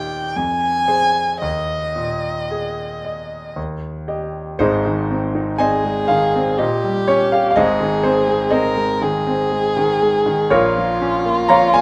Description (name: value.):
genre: classical, romantic duo for violin and grand piano.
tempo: 54-63 BPM.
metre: 3/4.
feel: rubato.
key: Ab major.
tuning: A4 = 439 Hz.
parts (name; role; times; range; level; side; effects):
dark violin; melody; 0.0-11.8 s; F4 to Ab5; -22 LUFS; equal; none.
bright concert grand piano; accompaniment; 0.0-11.8 s; Ab1 to Bb5; -20 LUFS; equal; none.
room: light reverb.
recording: none.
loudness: -18 LUFS.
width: mono.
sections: 0.0-4.6 A section; 4.6-11.8 B section.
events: none.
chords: 0.3 Fm; 1.4 Ebsus4; 3.6 Eb; 4.6 Ab; 6.6 Gdim/Bb; 7.6 Ab; 10.5 Bbm.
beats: 0.35 | 1.41 2.51 3.57 | 4.60 5.60 6.59 | 7.57 8.53 9.52 | 10.51 11.49.